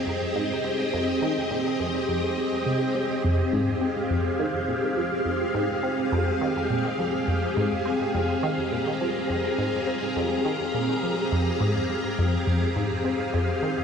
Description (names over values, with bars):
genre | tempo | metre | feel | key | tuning
ambient, sequencer-driven space music | 104 BPM | 4/4 | straight | F minor | A4 = 443 Hz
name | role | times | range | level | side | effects
string machine, full ensemble | sustained chords | 0.0-13.8 s | C4 to Bb5 | -25 LUFS | equal | phaser, ensemble chorus, shimmer reverb
bubbling stepped-filter texture | texture | 0.3-13.8 s | F5 to G5 | -38 LUFS | left 2 dB | chorus, built-in reverb, shimmer reverb
resonant blip pluck | riff | 0.1-13.8 s | F2 to C4 | -27 LUFS | equal | phaser, tape echo
room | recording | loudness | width
wet lush hall reverb, RT60 2.7 s | dreamy mix soaked in reverb | -23 LUFS | side -6 dB against mid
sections
0.0-13.8 A section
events
fade-in on synth texture 0.0-13.8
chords
0.0 Fmadd9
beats
0.36 | 0.93 1.51 2.09 2.66 | 3.24 3.82 4.39 4.97 | 5.55 6.13 6.70 7.28 | 7.86 8.43 9.01 9.59 | 10.16 10.74 11.32 11.89 | 12.47 13.05 13.63